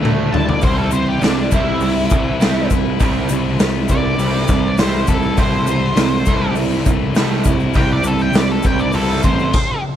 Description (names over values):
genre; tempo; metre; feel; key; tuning
indie rock; 101 BPM; 4/4; straight; unclear; A4 = 439 Hz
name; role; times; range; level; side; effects
biting overdriven guitar; riff; 0.0-9.5 s; C3 to E4; -25 LUFS; left 9 dB; none
crunchy overdriven guitar; riff; 0.0-9.5 s; G3 to A4; -22 LUFS; right 9 dB; analog chorus, tape echo
fuzz picked electric bass; bass; 0.0-9.5 s; A1 to D2; -20 LUFS; left 1 dB; overdrive
raw garage drum kit; drums; 0.1-9.7 s; crash cymbal, hi-hat, kick drum, snare drum, toms; -18 LUFS; equal; none
octave-fuzz lead guitar; melody; 0.3-9.8 s; D4 to A5; -22 LUFS; left 1 dB; distortion, tape echo
string machine, cellos; sustained chords; 0.6-9.5 s; C3 to D5; -30 LUFS; equal; none
egg shaker; percussion; 0.6-9.5 s; none; -34 LUFS; left 19 dB; none
room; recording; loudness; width
little or no reverb; none; -14 LUFS; side -10 dB against mid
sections
0.0-10.0 A section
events
drum fill 0.0-0.6; lead electric guitar solo 0.0-10.0; stop 9.5-10.0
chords
0.0 Dsus2; 0.6 C; 5.4 Am/C; 7.8 Cadd9